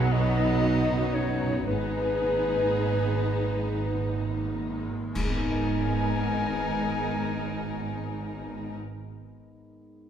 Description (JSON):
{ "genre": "cinematic, emotional film score for orchestra", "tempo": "32-41 BPM (dotted quarters)", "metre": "6/8", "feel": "rubato", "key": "G# minor", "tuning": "A4 = 442 Hz", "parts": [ { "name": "muted symphonic violin section", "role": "melody", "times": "0.0-8.7 s", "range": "D#4", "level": "-37 LUFS", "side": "left 3 dB", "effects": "none" }, { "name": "clear clarinet", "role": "second line", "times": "0.0-8.7 s", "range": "B4 to G#5", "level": "-34 LUFS", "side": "left 2 dB", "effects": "none" }, { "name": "mellow hollow large flute ensemble", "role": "second line", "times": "0.0-8.8 s", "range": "B4 to G#5", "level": "-38 LUFS", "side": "left 2 dB", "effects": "none" }, { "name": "muted symphonic violin section", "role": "second line", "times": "0.0-8.8 s", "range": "B3 to G#4", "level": "-39 LUFS", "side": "left 3 dB", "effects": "none" }, { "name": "dark concert grand piano", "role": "accompaniment", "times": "0.0-10.1 s", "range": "B1 to D#5", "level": "-34 LUFS", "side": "left 1 dB", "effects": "none" }, { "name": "muted symphonic viola section", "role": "accompaniment", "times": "0.0-8.8 s", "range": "F#3 to A#4", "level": "-36 LUFS", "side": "right 2 dB", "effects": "none" }, { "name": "mellow French horn section", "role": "sustained chords", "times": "0.0-8.8 s", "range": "G#3 to B4", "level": "-33 LUFS", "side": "left 2 dB", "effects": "none" }, { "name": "muted symphonic cello section", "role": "bass", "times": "0.0-8.7 s", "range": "G#2 to B2", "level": "-32 LUFS", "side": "right 3 dB", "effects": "none" }, { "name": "muted symphonic double bass section", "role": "bass", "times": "0.0-8.8 s", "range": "G#1 to B1", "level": "-32 LUFS", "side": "right 4 dB", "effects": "none" }, { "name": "cymbal swell, clash cymbals and concert bass drum", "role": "percussion", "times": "1.7-7.5 s", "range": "none", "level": "-37 LUFS", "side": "equal", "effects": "none" } ], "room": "wet scoring stage reverb, RT60 1.9 s", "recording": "none", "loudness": "-25 LUFS", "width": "side -9 dB against mid", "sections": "0.0-5.2 A section; 5.2-8.8 B section", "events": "slowing down 0.0-5.2; band accent 5.2-6.4", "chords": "0.0 B; 1.7 G#madd9" }